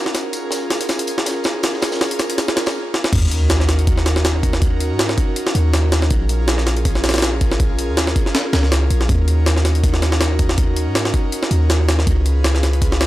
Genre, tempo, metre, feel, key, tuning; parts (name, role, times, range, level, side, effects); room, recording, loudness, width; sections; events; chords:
drum and bass, jungle; 161 BPM; 4/4; swing 54% on 16ths; Eb minor; A4 = 440 Hz
airy breathy pad; sustained chords; 0.0-13.1 s; Db4 to Cb5; -24 LUFS; equal; chorus
crunchy breakbeat drum kit; drums; 0.1-2.7 s; hi-hat, snare drum, tambourine; -30 LUFS; right 1 dB; high-pass filter on hats, studio reverb, high-pass filter on snare, high-pass filter on perc, high-pass filter on room
jungle sampler-style drum kit; drums; 0.1-13.1 s; crash cymbal, hi-hat, kick drum, snare drum; -18 LUFS; equal; studio reverb
warm 808-style bass; bass; 3.1-13.1 s; Bb1 to Ab2; -17 LUFS; equal
sub drop; sound effects; 3.1-4.6 s; -25 LUFS; equal
small room ambience; dry, gritty hardware recording, transformer saturation; -15 LUFS; side -16 dB against mid
0.0-3.1 A section; 3.1-13.1 B section
build-up 0.0-3.1; drum fill 0.1-2.8, 2.9; stop 2.8-3.1; drop 3.1-13.1; impact 3.1-4.6
0.1 Bbm7; 3.1 Ebm7; 6.1 Bbm7; 9.1 Ebm7; 12.1 Db7